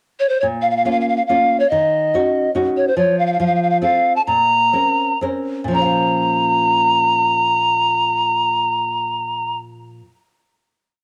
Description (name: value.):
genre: italian folk, Italian serenade.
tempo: 115-143 BPM.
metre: 3/4.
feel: rubato.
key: Bb minor.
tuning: A4 = 440 Hz.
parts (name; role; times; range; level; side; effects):
polished pan flute; melody; 0.2-9.6 s; C5 to Bb5; -18 LUFS; equal; cassette tape.
nylon-string guitar; accompaniment; 0.4-10.2 s; Bb2 to F5; -24 LUFS; equal; cassette tape.
room: light reverb, small room ambience.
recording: home recording on cassette.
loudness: -17 LUFS.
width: mono.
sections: 0.0-0.4 pickup bar; 0.4-5.7 A section; 5.7-8.8 final chord.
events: slowing down 3.0-5.7.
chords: 0.4 Bbm; 1.7 Ebm7; 3.0 N.C.; 3.4 F; 4.3 Bbmadd9.